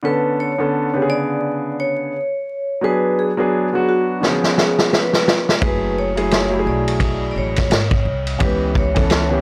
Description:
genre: hip hop, jazz-hop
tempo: 86 BPM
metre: 4/4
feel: swing 59% on 16ths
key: F# minor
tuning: A4 = 440 Hz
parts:
  - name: warm concert grand piano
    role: accompaniment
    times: 0.0-9.4 s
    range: C#3 to A4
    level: -22 LUFS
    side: equal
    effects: none
  - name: vibraphone with medium hard mallets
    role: melody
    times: 0.1-9.4 s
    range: F#4 to E5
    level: -25 LUFS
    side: equal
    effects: none
  - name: vintage drum kit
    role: drums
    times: 4.2-9.3 s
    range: hi-hat, kick drum, ride cymbal, snare drum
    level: -20 LUFS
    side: equal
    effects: none
  - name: upright bass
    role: bass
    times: 5.6-9.4 s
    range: F#1 to C#2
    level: -25 LUFS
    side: equal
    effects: tube saturation
room: light reverb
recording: dry, gritty hardware recording, vinyl crackle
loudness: -18 LUFS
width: mono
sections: 0.0-9.4 A section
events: drum fill 4.2-5.6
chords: 0.0 Bm9; 2.8 G#m7b5; 4.2 C#7; 5.6 F#m9; 8.4 C#m7b5

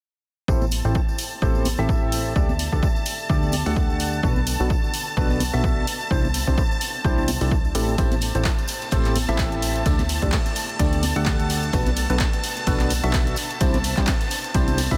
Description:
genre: piano house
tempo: 128 BPM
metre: 4/4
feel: swing 56% on 16ths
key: A dorian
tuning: A4 = 444 Hz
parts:
  - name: string machine, violins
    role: sustained chords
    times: 0.5-15.0 s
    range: A5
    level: -34 LUFS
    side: equal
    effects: ensemble chorus, sidechain pumping
  - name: percussive organ stab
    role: riff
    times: 0.5-15.0 s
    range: A2 to F#5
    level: -28 LUFS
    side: equal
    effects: analog chorus, sidechain pumping, tape echo
  - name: plucky analog bass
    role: bass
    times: 0.5-15.0 s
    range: A1 to D2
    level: -27 LUFS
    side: equal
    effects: sidechain pumping
  - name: electronic kick drum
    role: drums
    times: 0.5-15.0 s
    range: none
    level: -25 LUFS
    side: equal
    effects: none
  - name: tambourine and congas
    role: percussion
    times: 0.5-15.0 s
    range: none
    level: -36 LUFS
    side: equal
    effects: none
  - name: punchy analog drum machine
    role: drums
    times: 0.7-15.0 s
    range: handclaps, hi-hat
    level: -32 LUFS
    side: equal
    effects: none
  - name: modern studio drum kit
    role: drums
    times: 8.0-14.9 s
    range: hi-hat, snare drum, tambourine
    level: -41 LUFS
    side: equal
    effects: none
room: light reverb, studio ambience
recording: none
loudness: -22 LUFS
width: mono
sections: 0.5-15.0 A section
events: none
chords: 0.5 Am7; 2.4 Dsus4; 4.2 Bm7; 5.9 Cadd9; 8.0 Am7; 9.9 Dsus4; 11.7 Bm7; 13.4 Cadd9

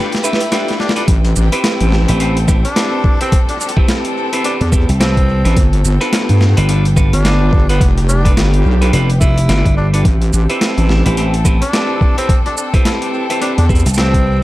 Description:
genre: glitch hop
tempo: 107 BPM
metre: 4/4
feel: swing 59% on 16ths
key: A minor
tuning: A4 = 441 Hz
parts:
  - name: electric guitar at the edge of break-up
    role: stabs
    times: 0.0-14.4 s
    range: C4 to B4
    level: -20 LUFS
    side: equal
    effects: sidechain pumping, analog delay
  - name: rich studio string section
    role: texture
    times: 0.0-14.4 s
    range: B3 to G5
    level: -24 LUFS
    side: left 1 dB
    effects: sidechain pumping
  - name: boom bap sampler-style drum kit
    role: drums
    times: 0.1-14.2 s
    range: hi-hat, rim click, shaker, snare drum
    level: -20 LUFS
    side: equal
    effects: overdrive, analog delay
  - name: raspy tenor saxophone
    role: melody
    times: 0.2-14.4 s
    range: B3 to E4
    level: -23 LUFS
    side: equal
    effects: analog delay
  - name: wobble bass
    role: bass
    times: 1.1-13.8 s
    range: F1 to G2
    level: -12 LUFS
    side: equal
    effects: chorus
  - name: electronic kick drum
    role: drums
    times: 1.1-14.2 s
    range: none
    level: -13 LUFS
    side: equal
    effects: overdrive
  - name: vintage slap bass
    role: bass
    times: 2.1-14.4 s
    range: F1 to C2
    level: -14 LUFS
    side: equal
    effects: none
room: digital ambience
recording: echo-heavy mix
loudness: -11 LUFS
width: side -16 dB against mid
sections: 0.0-14.4 A section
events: break 0.0-1.1; drum fill 0.0-1.1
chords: 0.0 G7; 1.1 Am7; 5.6 G7; 10.1 Am7

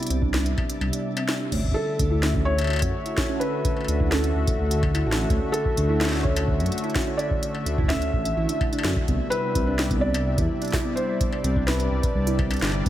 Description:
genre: IDM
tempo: 127 BPM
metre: 4/4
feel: straight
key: D major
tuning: A4 = 438 Hz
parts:
  - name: felt-muted upright piano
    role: melody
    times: 0.0-12.3 s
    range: A4 to E5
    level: -29 LUFS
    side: left 1 dB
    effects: vintage 12-bit sampler grit, analog delay
  - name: warm analog pad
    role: sustained chords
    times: 0.0-12.9 s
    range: C3 to E5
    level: -30 LUFS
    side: left 2 dB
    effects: chorus, vintage 12-bit sampler grit, sidechain pumping
  - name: industrial drum kit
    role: drums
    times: 0.0-12.9 s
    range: crash cymbal, hi-hat, snare drum, struck metal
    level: -30 LUFS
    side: equal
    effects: tape echo
  - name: twinkling granular texture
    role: texture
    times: 0.0-1.5 s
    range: D4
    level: -45 LUFS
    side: right 3 dB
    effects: none
  - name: harp-like synth pluck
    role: arpeggios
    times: 0.1-12.9 s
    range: B3 to F#4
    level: -30 LUFS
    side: right 3 dB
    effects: chorus, phaser, cassette tape, analog delay
  - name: dark detuned saw bass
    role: bass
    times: 0.1-12.9 s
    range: G1 to F#2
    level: -25 LUFS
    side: equal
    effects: none
  - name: electronic kick drum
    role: drums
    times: 0.2-12.9 s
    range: none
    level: -26 LUFS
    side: equal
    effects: none
room: light reverb, digital ambience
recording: echo-heavy mix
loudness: -21 LUFS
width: side -13 dB against mid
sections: 0.0-1.5 A section; 1.5-12.9 B section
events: none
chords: 0.0 Cmaj9; 1.5 Dmaj9; 9.1 Cmaj9

